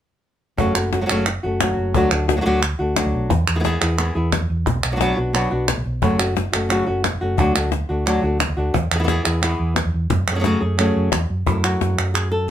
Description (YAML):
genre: flamenco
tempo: 176 BPM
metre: 4/4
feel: straight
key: F# minor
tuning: A4 = 440 Hz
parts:
  - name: flamenco guitar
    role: melody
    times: 0.6-12.5 s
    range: F#2 to A4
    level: -21 LUFS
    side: left 1 dB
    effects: none
  - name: hollow-body short-scale fingered electric bass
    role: bass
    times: 0.6-12.5 s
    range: F#1 to F#2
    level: -22 LUFS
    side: right 1 dB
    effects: none
  - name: cajon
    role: percussion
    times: 0.6-12.3 s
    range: none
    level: -24 LUFS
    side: left 5 dB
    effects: none
  - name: palmas hand claps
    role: percussion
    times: 0.6-12.3 s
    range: none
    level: -23 LUFS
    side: right 4 dB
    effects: none
room: light reverb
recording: minimal, uncompressed stereo recording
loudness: -17 LUFS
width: side -10 dB against mid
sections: 0.6-11.5 A section; 11.5-12.5 B section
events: none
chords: 0.6 F#m; 1.9 D; 3.3 E; 4.7 Bm; 6.0 F#m; 7.4 D; 8.7 E; 10.1 F#madd9; 11.5 F#m